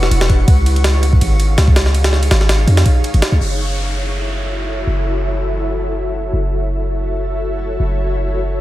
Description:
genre	drum and bass, jungle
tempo	164 BPM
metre	4/4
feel	swing 54% on 16ths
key	unclear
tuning	A4 = 440 Hz
part	ethereal airy pad	sustained chords	0.0-8.6 s	E4 to E5	-22 LUFS	equal	ensemble chorus, built-in reverb, tremolo
part	warm 808-style bass	bass	0.0-8.6 s	E1 to E#2	-16 LUFS	equal	none
part	jungle sampler-style drum kit	drums	0.0-3.3 s	kick drum, ride cymbal, snare drum	-15 LUFS	equal	none
part	twinkling granular texture	texture	0.0-3.4 s	C#5 to C#6	-31 LUFS	left 1 dB	built-in reverb
part	downlifter	sound effects	3.4-6.3 s	none	-28 LUFS	equal	none
room	light reverb, digital ambience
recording	none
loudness	-13 LUFS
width	side -15 dB against mid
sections	0.0-3.4 A section; 3.4-8.6 B section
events	drop 0.0-3.4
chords	0.5 C#maj7; 3.4 F#m7

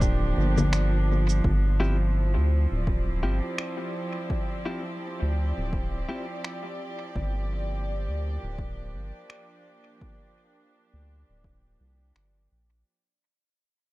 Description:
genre	ambient dub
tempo	84 BPM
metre	4/4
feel	swing 57% on 16ths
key	G dorian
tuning	A4 = 440 Hz
part	warm studio string section	sustained chords	0.0-12.9 s	F3 to D5	-33 LUFS	right 2 dB	none
part	round analog bass	bass	0.0-12.8 s	D1 to D2	-25 LUFS	equal	none
part	electronic cabasa, congas and finger snaps	drums	0.0-12.3 s	none	-31 LUFS	left 2 dB	dub echo
part	electronic kick drum	drums	0.0-11.6 s	none	-29 LUFS	equal	none
part	clean electric guitar	stabs	1.8-6.3 s	C4 to G4	-36 LUFS	left 2 dB	dub echo
room	digital ambience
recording	none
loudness	-25 LUFS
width	side -19 dB against mid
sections	0.0-1.4 A section; 1.4-12.9 B section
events	fade-out 1.4-12.9; filter sweep on analog synth bass 1.4-12.9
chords	0.0 Gm7; 1.4 Dm11; 7.2 Gm7

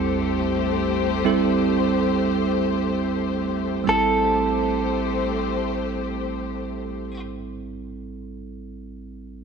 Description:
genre	pop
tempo	free time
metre	none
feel	none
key	A minor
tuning	A4 = 439 Hz
part	direct-recorded clean electric guitar	melody	0.0-7.2 s	A4	-25 LUFS	equal	slapback echo
part	bell-like tine electric piano	accompaniment	0.0-9.4 s	A1 to A4	-24 LUFS	right 5 dB	wide subtle chorus
part	warm studio string section	sustained chords	0.0-7.2 s	A3 to C5	-27 LUFS	left 10 dB	none
room	wet echo chamber reverb, RT60 2.2 s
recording	1960s-style stereo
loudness	-20 LUFS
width	side -6 dB against mid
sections	0.0-3.9 A section; 3.9-9.4 B section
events	slowing down 0.0-3.9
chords	0.0 Am7

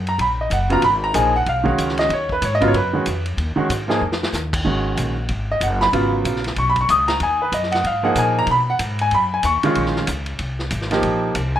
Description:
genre	modal jazz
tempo	188 BPM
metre	4/4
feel	swing 61% on 8ths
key	G# dorian from 4.7 s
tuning	A4 = 440 Hz
part	upright bass	bass	0.0-11.6 s	Gb1 to Cb3	-24 LUFS	equal	none
part	bright baby grand piano	accompaniment	0.1-11.6 s	Db3 to Eb6	-18 LUFS	equal	plate reverb
part	vintage drum kit	drums	0.1-11.4 s	crash cymbal, hi-hat, kick drum, ride cymbal, snare drum	-27 LUFS	equal	none
room	moderate small room ambience, RT60 0.5 s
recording	rough home demo mix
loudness	-17 LUFS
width	side -11 dB against mid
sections	0.0-4.7 A section; 4.7-11.6 A section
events	drum fill 4.0-4.3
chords	0.0 Abm11; 9.8 A#m11

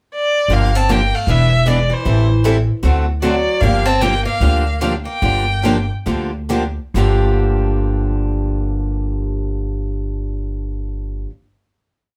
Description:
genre	acoustic string swing (jazz manouche)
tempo	131-153 BPM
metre	4/4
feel	swing 62% on 8ths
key	G minor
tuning	A4 = 440 Hz
part	rich violin	melody	0.1-5.9 s	C5 to A5	-21 LUFS	equal	none
part	picked steel-string acoustic guitar	second line	0.5-5.9 s	E3 to C4	-26 LUFS	equal	none
part	picked steel-string acoustic guitar	accompaniment	0.5-11.3 s	G2 to A4	-24 LUFS	equal	none
part	picked steel-string acoustic guitar	accompaniment	0.5-11.3 s	G2 to B4	-28 LUFS	equal	none
part	upright bass	bass	0.5-11.2 s	E1 to D2	-20 LUFS	equal	none
room	moderate studio ambience, RT60 0.5 s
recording	band playing live in one room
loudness	-17 LUFS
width	mono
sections	0.0-0.5 pickup bar; 0.5-7.0 A section; 7.0-10.6 final chord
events	slowing down 3.6-7.0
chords	0.5 Gm7; 1.3 E7; 2.1 Am7; 2.8 D7; 3.6 Gm7

